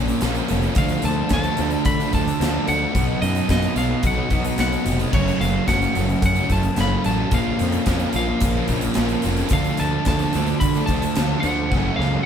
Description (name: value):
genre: quiet-loud alternative rock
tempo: 110 BPM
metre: 4/4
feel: straight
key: unclear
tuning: A4 = 441 Hz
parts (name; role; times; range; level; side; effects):
- crunchy overdriven guitar; riff; 0.0-12.3 s; F#2 to D#4; -28 LUFS; left 8 dB; none
- fuzz guitar; riff; 0.0-12.3 s; F#2 to D4; -27 LUFS; right 1 dB; distortion
- sludgy distorted guitar; riff; 0.0-12.3 s; F#2 to D#4; -26 LUFS; right 6 dB; overdrive
- fuzz picked electric bass; bass; 0.0-12.2 s; E#1 to D3; -24 LUFS; equal; overdrive
- big rock drum kit; drums; 0.1-12.1 s; crash cymbal, hi-hat, kick drum, snare drum; -24 LUFS; equal; none
- lightly driven lead guitar; melody; 0.8-12.3 s; C#5 to B5; -26 LUFS; equal; none
room: light reverb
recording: band playing live in one room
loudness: -18 LUFS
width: side -8 dB against mid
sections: 0.0-12.3 A section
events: drum fill 11.7-12.3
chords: 0.0 A#m; 0.8 Dm; 2.9 B; 5.1 F#m; 7.3 A#m; 9.5 Dm; 11.7 F#m